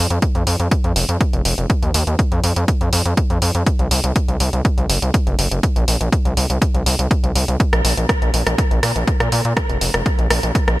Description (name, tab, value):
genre	melodic techno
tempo	122 BPM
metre	4/4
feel	straight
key	unclear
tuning	A4 = 441 Hz
part	gritty driven synth bass	bass	0.0-10.8 s	F1 to Bb2	-18 LUFS	equal	sidechain pumping
part	deep house drum kit	drums	0.1-10.8 s	hi-hat, rim click	-21 LUFS	equal	overdrive, gated reverb
part	electronic kick drum	drums	0.2-10.7 s	none	-18 LUFS	equal	overdrive
room	digital ambience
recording	bright 1980s-style digital production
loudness	-15 LUFS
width	side -18 dB against mid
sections	0.0-10.8 A section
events	none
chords	none